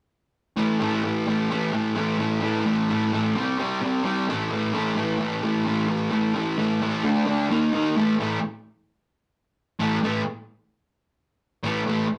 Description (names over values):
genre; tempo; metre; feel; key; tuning
rock; 130 BPM; 4/4; straight; unclear; A4 = 435 Hz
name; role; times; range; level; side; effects
fuzz guitar; riff; 0.6-12.1 s; A2 to D#4; -24 LUFS; equal; distortion
room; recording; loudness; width
moderate small room reverb, RT60 0.6 s; rough rehearsal-room recording, warm saturation; -24 LUFS; mono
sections
0.6-8.0 A section; 8.0-12.2 B section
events
none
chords
0.6 A5; 3.4 C5; 4.3 A5; 7.0 D5; 7.5 D#5; 8.0 A5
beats
| 0.58 1.04 1.51 1.97 | 2.43 2.89 3.35 3.82 | 4.28 4.74 5.20 5.66 | 6.12 6.58 7.04 7.51 | 7.97 8.43 8.89 9.35 | 9.81 10.27 10.72 11.18 | 11.64